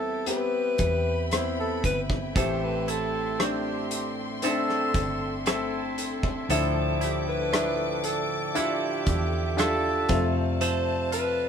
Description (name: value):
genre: pop ballad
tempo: 58 BPM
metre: 4/4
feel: straight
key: unclear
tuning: A4 = 440 Hz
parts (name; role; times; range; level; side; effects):
- warm alto saxophone; melody; 0.0-11.5 s; G4 to C5; -29 LUFS; equal; none
- warm concert grand piano; accompaniment; 0.0-11.5 s; A2 to A4; -29 LUFS; left 2 dB; none
- warm studio string section; sustained chords; 0.0-11.5 s; C4 to D6; -37 LUFS; left 3 dB; none
- vintage muted fingered electric bass; bass; 0.0-11.5 s; G1 to F2; -31 LUFS; right 1 dB; none
- loose indie drum kit; drums; 0.3-11.4 s; hi-hat, kick drum, rim click; -29 LUFS; equal; none
- twangy electric guitar; arpeggios; 2.4-11.5 s; A2 to A4; -33 LUFS; right 6 dB; none
room: moderate stone room reverb, RT60 1.3 s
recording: band playing live in one room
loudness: -24 LUFS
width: side -7 dB against mid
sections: 0.0-11.5 A section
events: none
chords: 0.0 Cmaj7/E; 2.4 Am7; 6.5 Dmadd9; 10.1 F